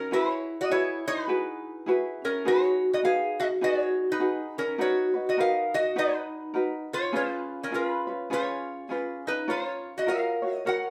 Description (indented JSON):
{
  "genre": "Hawaiian",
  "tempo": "102 BPM",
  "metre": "4/4",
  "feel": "swing 60% on 8ths",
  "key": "F# major",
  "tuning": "A4 = 440 Hz",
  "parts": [
    { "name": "lap resonator guitar", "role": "melody", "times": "0.0-10.9 s", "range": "C#4 to F#5", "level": "-31 LUFS", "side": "equal", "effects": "none" },
    { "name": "vibraphone with medium mallets", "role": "second line", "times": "0.0-10.9 s", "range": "C#4 to A#4", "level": "-33 LUFS", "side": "equal", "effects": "none" },
    { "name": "ukulele", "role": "accompaniment", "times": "0.0-10.9 s", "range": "C#4 to C#5", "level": "-32 LUFS", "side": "equal", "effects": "none" }
  ],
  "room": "wet studio reverb, RT60 0.7 s",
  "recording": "band playing live in one room",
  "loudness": "-28 LUFS",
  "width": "mono",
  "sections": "0.0-10.9 A section",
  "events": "none",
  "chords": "0.1 Eadd9; 2.4 G#m7; 4.8 Bmaj7; 7.1 C#7; 9.5 F#maj7"
}